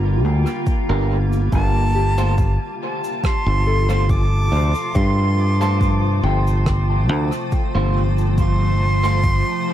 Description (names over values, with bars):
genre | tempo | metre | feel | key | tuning
ambient dub | 70 BPM | 4/4 | swing 53% on 16ths | unclear | A4 = 440 Hz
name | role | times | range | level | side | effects
granular cloud pad | sustained chords | 0.0-9.7 s | C3 to C5 | -26 LUFS | equal | built-in reverb
fingered electric bass | bass | 0.0-9.4 s | G1 to G2 | -17 LUFS | equal | tube saturation
cabasa and rim click | drums | 0.5-9.4 s | none | -36 LUFS | right 2 dB | dub echo
electronic kick drum | drums | 0.7-9.4 s | none | -20 LUFS | equal | overdrive
electric guitar at the edge of break-up | stabs | 0.9-9.2 s | G3 to C5 | -29 LUFS | right 2 dB | dub echo
bright silver concert flute | melody | 1.5-9.7 s | A5 to D6 | -25 LUFS | right 1 dB | analog delay
soft synth bell | arpeggios | 2.0-9.7 s | G4 to A5 | -31 LUFS | left 5 dB | chorus, analog delay
room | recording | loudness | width
small room ambience | echo-heavy mix | -16 LUFS | side -11 dB against mid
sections
0.0-9.7 A section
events
none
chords
0.0 Gm7; 1.5 F/G